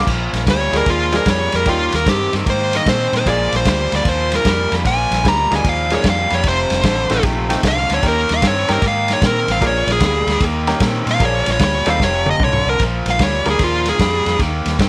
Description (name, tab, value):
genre	electric blues shuffle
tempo	151 BPM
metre	4/4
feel	swing 66% on 8ths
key	Bb mixolydian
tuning	A4 = 440 Hz
part	bright upright piano	accompaniment	0.0-14.0 s	G3 to C5	-25 LUFS	equal	none
part	crunchy overdriven guitar	riff	0.0-14.9 s	F2 to C4	-25 LUFS	equal	none
part	vintage muted fingered electric bass	bass	0.0-14.9 s	F1 to Bb2	-24 LUFS	equal	none
part	vintage drum kit	drums	0.1-14.9 s	crash cymbal, kick drum, ride cymbal, snare drum, toms	-22 LUFS	equal	none
part	dark smooth lead guitar	melody	0.5-14.4 s	F4 to Bb5	-20 LUFS	equal	overdrive
room	light reverb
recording	none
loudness	-16 LUFS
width	mono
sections	0.1-12.8 A section; 12.8-14.9 A section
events	lead electric guitar solo 0.1-14.9; drum fill 12.0-12.8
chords	0.1 Bb7; 1.7 Eb7; 3.3 Bb7; 6.4 F7; 8.0 Eb7; 9.6 Bb7; 10.4 Eb7; 11.2 Bb7; 12.0 F5; 12.8 Bb7; 14.4 Eb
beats	| 0.07 0.47 0.86 1.26 | 1.66 2.06 2.46 2.86 | 3.26 3.66 4.05 4.45 | 4.85 5.25 5.65 6.04 | 6.44 6.84 7.24 7.63 | 8.03 8.43 8.82 9.22 | 9.62 10.02 10.41 10.81 | 11.21 11.61 12.00 12.40 | 12.80 13.19 13.59 13.99 | 14.39 14.79